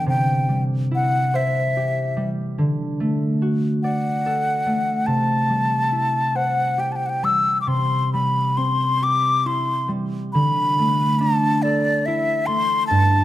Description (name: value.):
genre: celtic folk, Celtic slow air.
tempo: 47 BPM (dotted quarters).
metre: 6/8.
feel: rubato.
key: D mixolydian.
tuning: A4 = 440 Hz.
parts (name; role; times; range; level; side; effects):
wooden flute; melody; 0.0-13.2 s; D5 to E6; -20 LUFS; left 1 dB; none.
concert harp; accompaniment; 0.0-13.2 s; G2 to D5; -21 LUFS; equal; none.
room: light reverb.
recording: close, detailed microphones.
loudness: -18 LUFS.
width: side -14 dB against mid.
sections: 0.0-13.2 A section.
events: none.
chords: 0.1 C; 2.6 D; 5.1 C; 10.3 Dsus2.